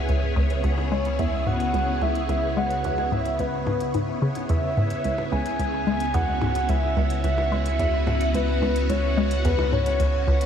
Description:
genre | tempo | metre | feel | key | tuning
ambient, sequencer-driven space music | 109 BPM | 4/4 | straight | C# minor | A4 = 439 Hz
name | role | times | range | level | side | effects
phased string machine | sustained chords | 0.0-10.5 s | C#3 to C#5 | -28 LUFS | right 1 dB | ensemble chorus, phaser
hollow square pluck | riff | 0.0-10.4 s | C#2 to G#3 | -26 LUFS | equal | chorus, phaser, ping-pong delay
round analog bass | bass | 0.0-10.5 s | C#2 | -27 LUFS | equal | none
electronic hi-hat and percussion blips | percussion | 0.1-10.5 s | none | -39 LUFS | left 1 dB | ping-pong delay
soft octave-layered synth lead | melody | 0.9-10.5 s | B4 to G#5 | -27 LUFS | equal | chorus, ping-pong delay
room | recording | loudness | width
moderate plate reverb, RT60 2.5 s | echo-heavy mix, cassette tape | -21 LUFS | side -8 dB against mid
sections
0.0-10.5 A section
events
fade-in on drum 0.0-10.5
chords
0.0 C#m7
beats
| 0.09 0.64 1.19 1.74 | 2.29 2.84 3.39 3.94 | 4.49 5.04 5.59 6.14 | 6.70 7.25 7.80 8.35 | 8.90 9.45 10.00

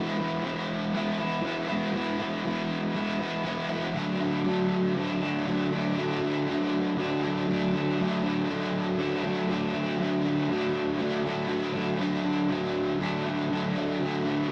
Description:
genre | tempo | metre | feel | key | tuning
rock | 120 BPM | 4/4 | straight | unclear | A4 = 440 Hz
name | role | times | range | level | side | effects
overdriven semi-hollow guitar | solo | 0.0-14.5 s | D3 to E4 | -28 LUFS | equal | harmonic tremolo
room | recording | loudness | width
wet stone room reverb, RT60 1.2 s | rough rehearsal-room recording, tube saturation | -28 LUFS | mono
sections
0.0-14.5 A section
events
none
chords
0.0 E; 4.0 D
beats
0.45 0.95 1.45 | 1.95 2.46 2.96 3.46 | 3.96 4.47 4.97 5.47 | 5.97 6.48 6.98 7.48 | 7.99 8.49 8.99 9.49 | 9.99 10.49 11.00 11.50 | 12.00 12.50 13.01 13.51 | 14.01 14.51

